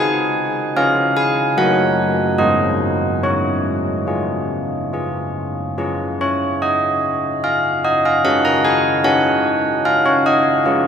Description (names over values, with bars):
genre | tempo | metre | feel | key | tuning
classical, tune for church bells | 73 BPM | 3/4 | uneven beats | Db major | A4 = 442 Hz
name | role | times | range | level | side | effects
carillon bells | solo | 0.0-10.9 s | Gb3 to Bb5 | -15 LUFS | equal | none
room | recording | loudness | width
wet cathedral reverb, RT60 5.8 s | heard from further back in the room | -15 LUFS | side -7 dB against mid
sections
0.0-5.8 A section; 5.8-10.9 A section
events
none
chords
0.0 Ab7(no3); 0.8 Db; 1.6 Ebm/Gb; 2.4 Ab; 3.2 Db; 8.2 Ab5/Db